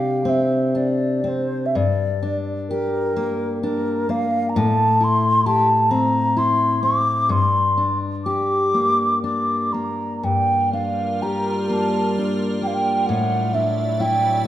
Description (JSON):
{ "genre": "celtic folk, Celtic slow air", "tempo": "58-67 BPM", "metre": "3/4", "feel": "rubato", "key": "unclear", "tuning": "A4 = 441 Hz", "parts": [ { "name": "mellow hollow wooden flute", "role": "melody", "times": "0.0-14.4 s", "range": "Bb4 to D6", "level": "-20 LUFS", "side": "equal", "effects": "none" }, { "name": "fingerpicked steel-string acoustic guitar", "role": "accompaniment", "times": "0.0-14.5 s", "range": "G2 to G4", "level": "-22 LUFS", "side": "left 2 dB", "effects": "none" }, { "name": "icy glass pad", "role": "sustained chords", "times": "10.7-14.5 s", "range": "A2 to D5", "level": "-27 LUFS", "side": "right 1 dB", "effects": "chorus, built-in reverb" } ], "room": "wet recital hall reverb, RT60 1.3 s", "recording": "none", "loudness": "-18 LUFS", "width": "side -12 dB against mid", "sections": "0.0-14.5 A section", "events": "none", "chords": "0.0 Csus2; 1.7 Gm; 4.6 Am; 7.3 Gm7; 13.1 Dadd9/A", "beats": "0.75 | 1.73 2.69 3.63 | 4.55 5.47 6.38 | 7.31 8.25 9.23 | 10.24 11.21 12.15 | 13.07 14.00" }